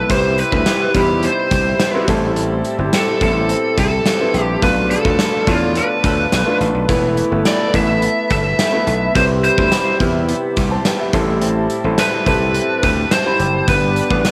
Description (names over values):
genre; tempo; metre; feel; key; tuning
1980s-style pop; 106 BPM; 4/4; straight; A minor; A4 = 441 Hz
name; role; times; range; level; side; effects
lead guitar through a small cranked amp; melody; 0.0-14.3 s; F4 to E5; -21 LUFS; equal; overdrive, cassette tape
clear concert grand piano; accompaniment; 0.0-14.3 s; G2 to B5; -22 LUFS; equal; cassette tape
brassy analog pad; sustained chords; 0.0-14.3 s; G4 to B5; -29 LUFS; equal; chorus, cassette tape
direct-recorded clean electric guitar; riff; 0.0-14.3 s; E3 to A4; -31 LUFS; equal; none
gritty slap bass; bass; 0.0-14.2 s; E1 to E2; -22 LUFS; equal; overdrive
gated 80s drum kit; drums; 0.1-14.3 s; hi-hat, kick drum, snare drum; -22 LUFS; equal; cassette tape
tambourine; percussion; 0.1-14.3 s; none; -37 LUFS; equal; none
room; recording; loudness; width
light reverb, studio ambience; home recording on cassette; -16 LUFS; mono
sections
0.0-14.3 A section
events
none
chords
0.1 Cmaj7; 2.1 Am7; 4.6 Bm7b5; 6.9 Esus4; 9.2 Cmaj7; 11.1 Am7; 13.7 G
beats
| 0.10 0.66 1.23 1.79 | 2.36 2.93 3.49 4.06 | 4.62 5.19 5.76 6.32 | 6.89 7.46 8.02 8.59 | 9.15 9.72 10.29 10.85 | 11.42 11.98 12.55 13.12 | 13.68 14.25